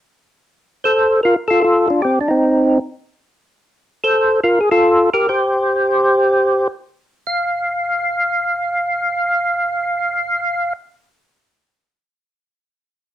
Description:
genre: jazz.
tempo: 106-151 BPM.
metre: 4/4.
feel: swing 65% on 8ths.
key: F mixolydian.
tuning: A4 = 439 Hz.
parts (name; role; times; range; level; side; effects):
percussive tonewheel organ; solo; 0.8-10.7 s; C4 to F5; -14 LUFS; equal; overdrive, chorus vibrato, slow rotary speaker.
room: moderate studio reverb, RT60 0.6 s.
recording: home recording on cassette.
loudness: -14 LUFS.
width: side -12 dB against mid.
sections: 0.4-7.3 A section; 7.3-11.8 B section.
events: slowing down 3.6-7.3.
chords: 0.4 Dm7; 2.0 N.C.; 3.6 Fadd11; 5.3 N.C..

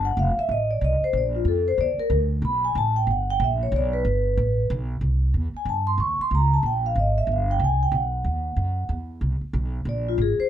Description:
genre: jazz, small-group swing and bop.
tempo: 186 BPM.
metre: 3/4.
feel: swing 62% on 8ths.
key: unclear.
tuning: A4 = 439 Hz.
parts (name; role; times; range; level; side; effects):
vibraphone with medium mallets; melody; 0.0-10.5 s; F4 to C#6; -24 LUFS; left 1 dB; none.
upright bass; bass; 0.0-10.4 s; F1 to G2; -23 LUFS; right 1 dB; none.
room: little or no reverb.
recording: dark, warm production.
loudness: -21 LUFS.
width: side -10 dB against mid.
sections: 0.0-5.0 A section; 5.0-10.5 A section.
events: vibraphone solo 0.0-10.5.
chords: 0.2 F; 1.1 Bb5; 2.1 D5; 3.1 G; 5.0 C; 6.0 Eb5; 7.0 Abmaj7; 7.9 B; 8.9 E5; 9.9 Bb7.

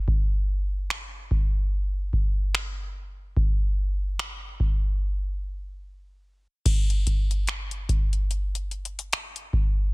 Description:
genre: R&B.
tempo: 73 BPM.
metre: 4/4.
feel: swing 58% on 16ths.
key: none.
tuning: none.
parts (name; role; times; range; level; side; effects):
booming analog drum machine; drums; 0.1-9.8 s; crash cymbal, finger snaps, hi-hat, kick drum; -24 LUFS; equal; soft clipping on snare.
room: little or no reverb.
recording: dense, heavily limited modern master.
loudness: -24 LUFS.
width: side -25 dB against mid.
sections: 0.0-6.7 A section; 6.7-9.9 B section.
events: break 5.0-6.7.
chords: none.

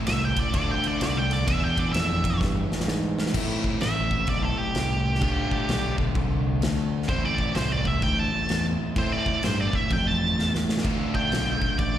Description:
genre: blues rock power trio and southern rock.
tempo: 128 BPM.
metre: 4/4.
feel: swing 63% on 8ths.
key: A minor.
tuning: A4 = 440 Hz.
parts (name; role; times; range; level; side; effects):
crunchy overdriven guitar; riff; 0.0-12.0 s; A2 to A4; -28 LUFS; equal; slapback echo.
octave-fuzz lead guitar; melody; 0.1-12.0 s; G4 to A5; -28 LUFS; right 2 dB; distortion, slapback echo, tape echo.
growling fingered electric bass; bass; 0.1-12.0 s; A1 to A2; -27 LUFS; equal; overdrive.
big rock drum kit; drums; 0.1-11.9 s; crash cymbal, kick drum, ride cymbal, snare drum; -29 LUFS; equal; none.
room: little or no reverb.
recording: live gig heard through the venue's PA, recital hall reverb.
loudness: -22 LUFS.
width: side -11 dB against mid.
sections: 0.0-3.3 A section; 3.3-12.0 A section.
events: lead electric guitar solo 0.0-12.0; drum fill 2.4-3.3, 10.4-10.8.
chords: 0.0 Am; 0.5 Dm7; 1.5 E7#9; 3.3 Am7; 5.2 Dm7; 7.1 Am; 10.8 Dm.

